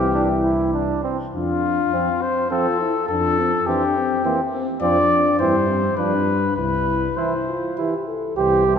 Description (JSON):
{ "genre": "classical, brass quintet", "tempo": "102 BPM", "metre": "3/4", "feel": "straight", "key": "C major from 4.8 s", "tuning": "A4 = 440 Hz", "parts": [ { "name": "mellow trumpet", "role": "melody", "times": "0.0-8.8 s", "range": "F4 to D5", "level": "-22 LUFS", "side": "left 3 dB", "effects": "none" }, { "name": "warm flugelhorn", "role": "second line", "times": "0.0-8.8 s", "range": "C4 to G4", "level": "-25 LUFS", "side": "right 4 dB", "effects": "none" }, { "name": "mellow French horn", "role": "accompaniment", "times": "0.0-8.8 s", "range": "G3 to A4", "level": "-25 LUFS", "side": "left 4 dB", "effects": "none" }, { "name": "warm euphonium", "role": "accompaniment", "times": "0.0-8.8 s", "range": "E3 to F3", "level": "-30 LUFS", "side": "right 2 dB", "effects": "none" }, { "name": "dark bass trombone", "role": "bass", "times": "0.0-8.8 s", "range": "C2 to G2", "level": "-26 LUFS", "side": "right 1 dB", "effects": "none" } ], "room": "wet church reverb, RT60 3.2 s", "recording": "recorded in a church or concert hall", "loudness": "-18 LUFS", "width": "side -7 dB against mid", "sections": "0.0-8.4 A section", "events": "none", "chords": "0.0 C; 1.3 F; 3.1 C/F; 4.8 Dm7/F; 5.4 C/G; 6.0 G7; 6.6 C" }